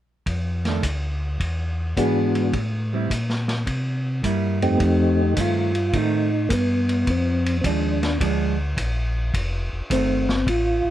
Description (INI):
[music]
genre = soul jazz organ trio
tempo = 106 BPM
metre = 4/4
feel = swing 68% on 8ths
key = F mixolydian from 4.8 s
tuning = A4 = 437 Hz
[part]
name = mellow tonewheel organ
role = bass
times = 0.3-10.9 s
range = F1 to C3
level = -24 LUFS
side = equal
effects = slow rotary speaker
[part]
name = vintage drum kit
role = drums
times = 0.3-10.7 s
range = hi-hat, kick drum, ride cymbal, snare drum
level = -28 LUFS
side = equal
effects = none
[part]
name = vintage hollow-body jazz guitar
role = accompaniment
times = 0.7-10.3 s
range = Eb3 to G#4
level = -26 LUFS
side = right 6 dB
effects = none
[part]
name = percussive tonewheel organ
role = melody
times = 2.0-10.9 s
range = F2 to G4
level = -21 LUFS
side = equal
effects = slow rotary speaker, chorus vibrato, plate reverb
[sound]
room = little or no reverb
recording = dark, warm production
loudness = -20 LUFS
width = side -12 dB against mid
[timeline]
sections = 0.3-4.8 A section; 4.8-10.9 B section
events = none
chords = 0.3 F6; 1.4 E7; 2.5 Am7; 3.7 C7; 4.8 F7; 7.1 Bb7; 9.3 F7